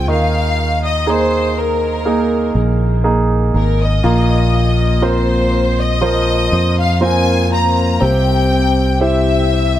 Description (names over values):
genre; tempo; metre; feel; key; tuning
pop ballad; 60 BPM; 4/4; straight; unclear; A4 = 440 Hz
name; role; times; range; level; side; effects
bright studio violin section; melody; 0.0-9.8 s; Bb4 to Bb5; -19 LUFS; left 2 dB; dub echo
clear concert grand piano; accompaniment; 0.0-9.8 s; Eb3 to E5; -18 LUFS; right 3 dB; dub echo
fingered electric bass; bass; 0.0-9.8 s; Ab1 to F2; -16 LUFS; equal; none
fingerpicked plugged-in steel-string acoustic guitar; arpeggios; 4.0-9.8 s; Bb2 to G4; -19 LUFS; left 4 dB; dub echo
room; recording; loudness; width
small room ambience; echo-heavy mix; -12 LUFS; side -12 dB against mid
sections
0.0-9.8 A section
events
none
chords
0.1 Ebsus4; 4.0 Bbsus2; 8.0 C